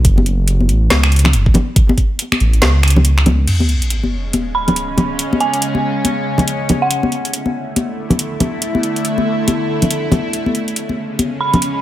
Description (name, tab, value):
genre	deep dubstep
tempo	140 BPM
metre	4/4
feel	swing 61% on 16ths, half-time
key	C# phrygian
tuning	A4 = 440 Hz
part	dark detuned saw bass	bass	0.0-3.5 s	F#1 to C#2	-12 LUFS	equal	none
part	electronic kick drum	drums	0.0-2.1 s	none	-12 LUFS	equal	none
part	garage drum kit	drums	0.0-11.7 s	crash cymbal, finger snaps, hi-hat, snare drum	-19 LUFS	right 1 dB	none
part	congas	percussion	0.2-11.6 s	none	-19 LUFS	left 2 dB	none
part	bowed-like drone	sustained chords	4.3-11.8 s	C#3 to E4	-20 LUFS	equal	built-in reverb, phaser, vintage 12-bit sampler grit
part	sub drop	sound effects	3.5-5.2 s	none	-19 LUFS	equal	none
part	dark detuned synth bell	melody	4.5-7.0, 11.4-11.8 s	F#5 to B5	-20 LUFS	right 3 dB	chorus, dub echo
room	light reverb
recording	none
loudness	-13 LUFS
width	side -13 dB against mid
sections	0.0-3.5 A section; 3.5-11.8 B section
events	impact 3.5-5.2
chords	0.0 F#m; 3.5 C#5; 6.9 D5; 10.3 C#5